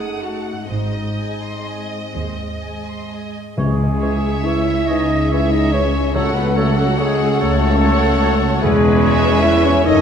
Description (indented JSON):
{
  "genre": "classical, slow romantic movement for symphony orchestra",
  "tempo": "41-50 BPM (dotted quarters)",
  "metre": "6/8",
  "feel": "rubato",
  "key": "C# minor",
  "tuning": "A4 = 442 Hz",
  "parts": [
    { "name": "rich studio violin section", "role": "melody", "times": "0.0-10.0 s", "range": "D#5 to F#5", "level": "-28 LUFS", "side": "left 3 dB", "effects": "none" },
    { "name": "mellow clarinet", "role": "second line", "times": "0.0-10.0 s", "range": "D#4 to E5", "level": "-26 LUFS", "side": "right 1 dB", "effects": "none" },
    { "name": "warm studio violin section", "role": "second line", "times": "0.0-10.0 s", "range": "F#4 to D#6", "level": "-30 LUFS", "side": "left 2 dB", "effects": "none" },
    { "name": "warm studio viola section", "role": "accompaniment", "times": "0.0-10.0 s", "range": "G#3 to C#5", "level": "-28 LUFS", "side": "equal", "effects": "none" },
    { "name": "mellow French horn section", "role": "sustained chords", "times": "0.0-10.0 s", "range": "F#3 to E4", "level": "-21 LUFS", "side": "left 2 dB", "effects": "none" },
    { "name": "concert harp", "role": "arpeggios", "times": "0.0-10.0 s", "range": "E2 to G#4", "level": "-27 LUFS", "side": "left 5 dB", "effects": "none" },
    { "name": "rich studio cello section", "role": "bass", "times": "0.0-10.0 s", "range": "C#2 to G#2", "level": "-22 LUFS", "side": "right 2 dB", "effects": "none" },
    { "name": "warm studio double bass section", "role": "bass", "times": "0.0-10.0 s", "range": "E1 to D#2", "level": "-22 LUFS", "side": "right 2 dB", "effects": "none" },
    { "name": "mellow small flute group", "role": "second line", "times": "3.6-10.0 s", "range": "F#4 to E5", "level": "-27 LUFS", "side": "equal", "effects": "none" },
    { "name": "warm oboe", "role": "second line", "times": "3.6-10.0 s", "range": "C#5", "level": "-29 LUFS", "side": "right 2 dB", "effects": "none" },
    { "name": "mellow bassoon", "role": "accompaniment", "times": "3.6-10.0 s", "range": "D#3 to F#3", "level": "-28 LUFS", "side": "right 2 dB", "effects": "none" },
    { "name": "warm trumpet", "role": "stabs", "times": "3.6-10.0 s", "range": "F#4 to E5", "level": "-26 LUFS", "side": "right 1 dB", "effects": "none" },
    { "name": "timpani", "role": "percussion", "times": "3.6-7.4 s", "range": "C#3", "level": "-25 LUFS", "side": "left 1 dB", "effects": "none" }
  ],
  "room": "wet concert hall reverb, RT60 2.0 s",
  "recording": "minimal, uncompressed stereo recording",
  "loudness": "-14 LUFS",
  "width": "side -7 dB against mid",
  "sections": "0.0-3.6 A section; 3.6-10.0 B section",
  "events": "none",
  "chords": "0.0 D#dim/F#; 0.7 G#; 3.6 C#m; 6.2 F#m/C#; 8.6 C#m/E"
}